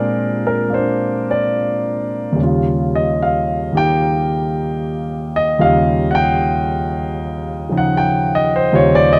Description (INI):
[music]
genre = solo jazz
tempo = 75 BPM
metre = 4/4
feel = swing 69% on 8ths, rubato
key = unclear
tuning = A4 = 442 Hz
[part]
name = warm grand piano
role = solo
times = 0.0-9.2 s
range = Eb2 to G5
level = -17 LUFS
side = equal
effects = none
[sound]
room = light reverb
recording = dark, warm production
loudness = -17 LUFS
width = mono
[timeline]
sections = 0.0-9.2 A section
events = grand piano solo 0.0-9.2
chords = 0.0 Bb9; 2.4 Eb9